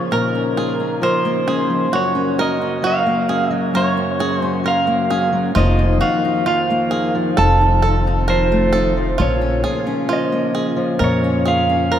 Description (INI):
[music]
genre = acoustic folk duo or small band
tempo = 66 BPM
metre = 4/4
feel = straight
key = Bb minor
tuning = A4 = 441 Hz
[part]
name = electric guitar through a small old amp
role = melody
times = 0.0-12.0 s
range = Bb4 to A5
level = -20 LUFS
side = right 1 dB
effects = harmonic tremolo
[part]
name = fingerpicked steel-string acoustic guitar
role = accompaniment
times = 0.0-12.0 s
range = F2 to A4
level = -20 LUFS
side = left 2 dB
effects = none
[part]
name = tonewheel organ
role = sustained chords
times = 0.0-12.0 s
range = Db3 to Gb4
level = -25 LUFS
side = right 1 dB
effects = slow rotary speaker, overdrive
[part]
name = bluegrass banjo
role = arpeggios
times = 0.0-12.0 s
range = F4 to Bb4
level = -24 LUFS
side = right 4 dB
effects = none
[part]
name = upright bass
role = bass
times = 5.6-12.0 s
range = F1 to F2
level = -18 LUFS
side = equal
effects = none
[sound]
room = wet cathedral reverb, RT60 5.4 s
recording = in a vast, echoing space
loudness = -15 LUFS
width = side -10 dB against mid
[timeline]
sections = 0.0-12.0 A section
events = none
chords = 0.0 Bbm; 1.9 Gb; 5.6 F7sus4; 7.4 F7; 9.2 Bbm